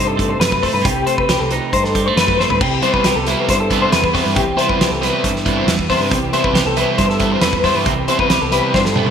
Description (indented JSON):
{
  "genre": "math rock and midwest emo",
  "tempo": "137 BPM",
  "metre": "4/4",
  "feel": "straight",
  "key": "unclear",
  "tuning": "A4 = 441 Hz",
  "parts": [
    { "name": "twelve-string electric guitar", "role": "accompaniment", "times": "0.0-9.1 s", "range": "G2 to G4", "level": "-22 LUFS", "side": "right 6 dB", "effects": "none" },
    { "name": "electric guitar through a small old amp", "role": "arpeggios", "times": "0.0-9.1 s", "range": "G4 to C5", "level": "-17 LUFS", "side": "left 3 dB", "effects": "ensemble chorus" },
    { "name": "growling fingered electric bass", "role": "bass", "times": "0.0-9.1 s", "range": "C2 to G2", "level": "-23 LUFS", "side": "equal", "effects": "overdrive" },
    { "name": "loose indie drum kit", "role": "drums", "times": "0.2-9.1 s", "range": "crash cymbal, hi-hat, kick drum, snare drum, toms", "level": "-20 LUFS", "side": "right 1 dB", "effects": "gated reverb" },
    { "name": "crunchy overdriven guitar", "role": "riff", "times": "2.8-9.1 s", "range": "C3 to E4", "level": "-20 LUFS", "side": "right 2 dB", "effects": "none" }
  ],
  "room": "wet lush hall reverb, RT60 2.0 s",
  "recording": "bright 1980s-style digital production",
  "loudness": "-13 LUFS",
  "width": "side -7 dB against mid",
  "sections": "0.0-9.1 A section",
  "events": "drum fill 2.4, 8.7-9.1",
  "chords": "0.0 Cm6; 2.6 Cmaj7"
}